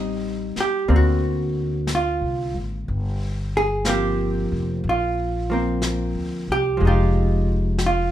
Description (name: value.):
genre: jazz ballad.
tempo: 61 BPM.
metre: 4/4.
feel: swing 67% on 8ths.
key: unclear.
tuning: A4 = 439 Hz.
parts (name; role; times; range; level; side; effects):
hollow-body jazz guitar; accompaniment; 0.0-8.1 s; D3 to Ab4; -22 LUFS; right 1 dB; none.
upright bass; bass; 0.0-8.1 s; F1 to D2; -23 LUFS; left 1 dB; none.
vintage brush drum kit; drums; 0.6-8.1 s; brushed snare drum, hi-hat, snare drum; -31 LUFS; left 2 dB; none.
room: light reverb.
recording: minimal, uncompressed stereo recording.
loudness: -20 LUFS.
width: side -12 dB against mid.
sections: 0.0-8.1 A section.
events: none.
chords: 0.0 Am7b5; 0.9 Daug7; 2.9 Gm7; 6.8 Fm9.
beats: 0.89 1.88 | 2.87 3.85 4.83 5.82 | 6.80 7.79.